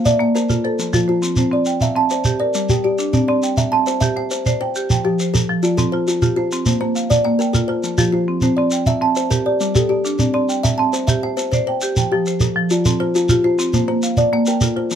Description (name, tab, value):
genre	southern african traditional, mbira-style interlocking cycle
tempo	136 BPM (dotted quarters)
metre	12/8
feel	straight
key	C mixolydian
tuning	A4 = 439 Hz
part	kalimba	arpeggios	0.0-15.0 s	F3 to A5	-19 LUFS	left 2 dB	none
part	marimba with medium hard mallets	arpeggios	0.0-15.0 s	F3 to A5	-21 LUFS	right 2 dB	none
part	shekere	percussion	0.1-15.0 s	none	-20 LUFS	right 2 dB	none
room	light reverb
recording	none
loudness	-15 LUFS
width	side -9 dB against mid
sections	0.0-3.1 A section; 3.1-15.0 B section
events	none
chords	0.5 F; 1.4 C; 2.3 Gm; 3.1 C; 4.9 F; 6.7 Bb; 7.5 F; 8.4 C; 9.3 Gm; 10.2 C; 12.0 F; 13.7 Bb